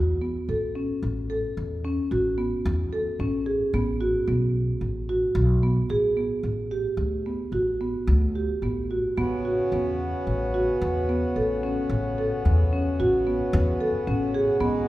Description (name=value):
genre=contemporary instrumental, chamber music in an uneven meter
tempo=110 BPM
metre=5/4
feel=straight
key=A major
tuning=A4 = 438 Hz
part: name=marimba with soft mallets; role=arpeggios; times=0.0-14.8 s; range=B3 to A4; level=-25 LUFS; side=right 1 dB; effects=none
part: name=upright bass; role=bass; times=0.0-14.9 s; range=A1 to E2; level=-26 LUFS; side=equal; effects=none
part: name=pedal harmonium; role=sustained chords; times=9.2-14.9 s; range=C#3 to F#4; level=-29 LUFS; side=left 1 dB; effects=none
room=wet recital hall reverb, RT60 1.7 s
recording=heard from further back in the room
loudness=-22 LUFS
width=side -16 dB against mid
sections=0.0-14.9 A section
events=none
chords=0.0 Aadd9; 3.7 F#madd11/A; 6.4 Gmaj7/A; 9.2 A69